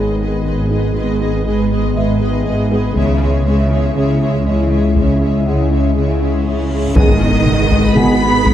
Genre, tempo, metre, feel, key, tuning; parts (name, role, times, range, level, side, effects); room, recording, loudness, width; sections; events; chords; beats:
cinematic, hybrid orchestral and electronic film score; 120 BPM; 4/4; straight; G# minor; A4 = 442 Hz
warm symphonic violin section; second line; 0.0-8.5 s; B4 to B5; -23 LUFS; left 2 dB
warm symphonic viola section; accompaniment; 0.0-8.5 s; G#3 to G#4; -23 LUFS; equal
dark French horn section; sustained chords; 0.0-8.1 s; D#3 to G#4; -24 LUFS; left 3 dB
ethereal airy pad; sustained chords; 0.0-8.5 s; D#3 to G#4; -22 LUFS; left 2 dB; ensemble chorus, built-in reverb
harp-like synth pluck; arpeggios; 0.0-8.5 s; C#3 to G#4; -22 LUFS; right 2 dB
phased detuned saw bass; bass; 0.0-8.5 s; G#1 to C#2; -20 LUFS; equal; phaser
warm symphonic cello section; bass; 0.0-8.5 s; G#2 to B3; -21 LUFS; right 2 dB
warm symphonic double bass section; bass; 0.0-8.5 s; G#1 to C#2; -22 LUFS; right 2 dB
felt-muted upright piano; texture; 0.0-8.5 s; B3 to G#5; -30 LUFS; left 2 dB
taiko ensemble; drums; 3.0-8.5 s; -17 LUFS; equal
reverse cymbal and impact; sound effects; 6.8-8.5 s; -24 LUFS; left 1 dB
rich symphonic violin section; melody; 7.0-8.5 s; D#6 to B6; -22 LUFS; left 2 dB
warm trombone section; sustained chords; 7.0-8.1 s; D#3 to G#3; -25 LUFS; right 2 dB
moderate scoring stage reverb, RT60 1.9 s; dark, warm production; -12 LUFS; side -11 dB against mid
0.0-7.0 A section; 7.0-8.5 B section
reverse cymbal 6.8; impact 7.0-8.5
0.0 G#m; 3.0 C#m; 7.0 G#m
0.46 | 0.96 1.46 1.96 2.46 | 2.96 3.46 3.96 4.46 | 4.96 5.46 5.96 6.46 | 6.96 7.46 7.96 8.46